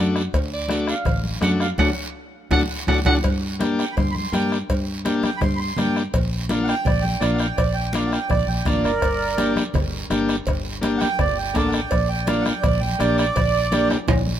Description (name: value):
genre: latin, cumbia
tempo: 166 BPM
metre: 4/4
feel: straight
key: G minor from 3.2 s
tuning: A4 = 440 Hz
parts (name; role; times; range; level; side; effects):
- bright clarinet; second line; 0.0-3.1 s; D5 to F#5; -26 LUFS; right 2 dB; none
- overdriven combo organ; accompaniment; 0.0-14.0 s; A3 to A4; -24 LUFS; left 2 dB; none
- fingered electric bass; bass; 0.0-14.4 s; G1 to G2; -25 LUFS; equal; none
- bombo; percussion; 0.2-14.3 s; none; -25 LUFS; left 2 dB; none
- guiro; percussion; 0.2-14.4 s; none; -34 LUFS; right 5 dB; none
- congas; percussion; 0.3-14.4 s; none; -30 LUFS; right 1 dB; none
- cowbell and timbales; percussion; 0.3-14.3 s; none; -30 LUFS; right 4 dB; none
- accordion; melody; 3.8-13.9 s; Bb4 to C6; -24 LUFS; right 5 dB; light tremolo tuning
room: light reverb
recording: minimal, uncompressed stereo recording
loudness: -19 LUFS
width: side -10 dB against mid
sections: 0.0-3.2 A section; 3.2-14.4 B section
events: clarinet solo 0.0-3.2; band accent 1.8-3.2; drum fill 2.5-3.2, 13.9-14.4; accordion solo 3.2-14.4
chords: 0.0 D; 3.2 Gm; 6.1 Bb; 9.0 Gmadd9; 11.9 Bb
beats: | 0.34 0.70 1.06 1.43 | 1.79 2.15 2.51 2.88 | 3.24 3.60 3.96 4.33 | 4.69 5.05 5.41 5.77 | 6.13 6.50 6.86 7.22 | 7.58 7.94 8.30 8.67 | 9.03 9.39 9.75 10.11 | 10.47 10.84 11.20 11.56 | 11.92 12.28 12.64 13.00 | 13.37 13.73 14.09